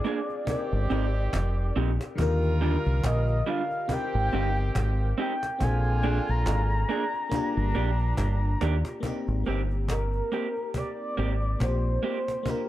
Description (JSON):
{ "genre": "lovers rock reggae", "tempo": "70 BPM", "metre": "4/4", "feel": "swing 56% on 16ths", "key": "unclear", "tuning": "A4 = 441 Hz", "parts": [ { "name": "reedy FM lead", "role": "melody", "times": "0.0-12.7 s", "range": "Bb4 to Bb5", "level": "-32 LUFS", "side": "equal", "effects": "chorus, tremolo, tape echo" }, { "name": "FM electric piano with soft pad layer", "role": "accompaniment", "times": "0.0-12.7 s", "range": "D3 to Bb4", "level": "-35 LUFS", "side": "left 4 dB", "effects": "chorus, phaser, tape echo" }, { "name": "electric guitar through a small old amp", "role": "stabs", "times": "0.0-12.2 s", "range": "G3 to Ab4", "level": "-33 LUFS", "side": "right 4 dB", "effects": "tape echo" }, { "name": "cajon", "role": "drums", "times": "0.0-12.7 s", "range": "none", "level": "-33 LUFS", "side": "equal", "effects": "none" }, { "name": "warm horn section", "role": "second line", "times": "0.5-8.6 s", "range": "Bb2 to Bb4", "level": "-36 LUFS", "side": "right 2 dB", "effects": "tape echo" }, { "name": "deep dub fingered electric bass", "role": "bass", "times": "0.7-12.0 s", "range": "F1 to Eb2", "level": "-25 LUFS", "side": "equal", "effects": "none" } ], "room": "light reverb, small room ambience", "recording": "dark, warm production", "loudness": "-24 LUFS", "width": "side -14 dB against mid", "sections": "0.0-9.0 A section; 9.0-12.7 B section", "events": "none", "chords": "0.5 Abmaj7; 2.2 Ebmaj9; 3.9 Abmaj7; 5.6 Bb7; 7.3 Ebmaj7 (rootless); 9.0 Abmaj9", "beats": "0.47 1.33 | 2.18 3.04 3.89 4.75 | 5.61 6.46 7.32 8.17 | 9.03 9.88 10.74 11.60 | 12.45" }